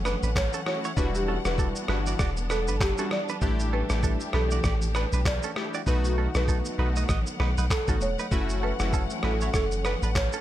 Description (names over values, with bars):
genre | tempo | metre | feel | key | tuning
afrobeats | 98 BPM | 4/4 | swing 58% on 16ths | E dorian | A4 = 439 Hz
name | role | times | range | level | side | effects
buzzing marimba with medium mallets | melody | 0.0-10.4 s | F#4 to D5 | -32 LUFS | right 1 dB | digital delay, plate reverb
warm studio string section | sustained chords | 0.0-10.4 s | D#3 to F#5 | -35 LUFS | left 2 dB | sidechain pumping, plate reverb
punchy sub bass | bass | 0.0-10.3 s | E1 to B1 | -27 LUFS | equal | none
direct-recorded clean electric guitar | riff | 0.1-10.4 s | C#4 to D#5 | -35 LUFS | right 10 dB | vibrato effect, digital delay
lo-fi sampler-style drum kit | drums | 0.1-10.4 s | handclaps, kick drum, rim click, shaker | -29 LUFS | equal | none
warm analog keys | accompaniment | 0.7-9.5 s | G3 to G4 | -33 LUFS | left 2 dB | chorus, plate reverb
room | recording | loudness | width
light reverb | none | -24 LUFS | side -13 dB against mid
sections
0.0-10.4 A section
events
none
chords
0.0 F#m7; 1.0 Em9; 3.4 A7sus4; 5.9 B7; 8.3 F#m7